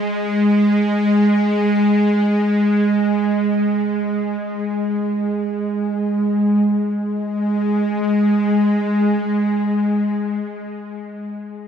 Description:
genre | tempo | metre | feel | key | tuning
ambient | free time | none | none | unclear | A4 = 439 Hz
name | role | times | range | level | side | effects
bowed-like drone | solo | 0.0-10.9 s | Ab3 | -16 LUFS | equal | built-in reverb, tape echo
room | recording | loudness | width
wet huge ambient reverb, RT60 7.4 s | in a vast, echoing space | -16 LUFS | side -8 dB against mid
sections
0.0-6.7 A section; 6.7-11.4 B section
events
none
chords
none

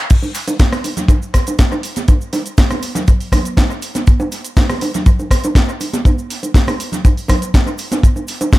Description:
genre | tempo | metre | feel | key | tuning
nu-disco | 121 BPM | 4/4 | straight | none | none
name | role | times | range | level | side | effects
house drum kit | drums | 0.1-8.6 s | crash cymbal, hi-hat, rim click, shaker, snare drum | -21 LUFS | equal | dub echo
kick drum | drums | 0.1-8.6 s | none | -11 LUFS | equal | none
cabasa, bongos and congas | percussion | 0.1-8.6 s | none | -21 LUFS | right 2 dB | none
room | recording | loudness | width
small room ambience | echo-heavy mix | -13 LUFS | side -18 dB against mid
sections
0.1-8.6 A section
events
drop 0.1-8.6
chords
none

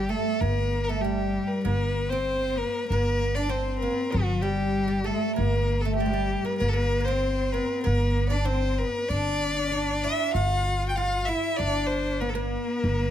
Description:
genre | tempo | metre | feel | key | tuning
arabic | 97 BPM | 4/4 | straight | G maqam rast | A4 = 439 Hz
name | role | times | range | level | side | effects
clear violin | melody | 0.0-13.1 s | F#4-43c to G5 | -28 LUFS | left 2 dB | none
clear cello | second line | 0.0-13.1 s | F#3-44c to F4+49c | -30 LUFS | left 4 dB | none
oud | second line | 0.0-13.1 s | F#3-50c to F#4-50c | -32 LUFS | right 8 dB | none
upright bass | bass | 0.0-13.1 s | G1 | -28 LUFS | equal | none
room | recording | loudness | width
light reverb | close, detailed microphones | -23 LUFS | side -10 dB against mid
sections
0.0-13.1 A section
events
none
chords
none

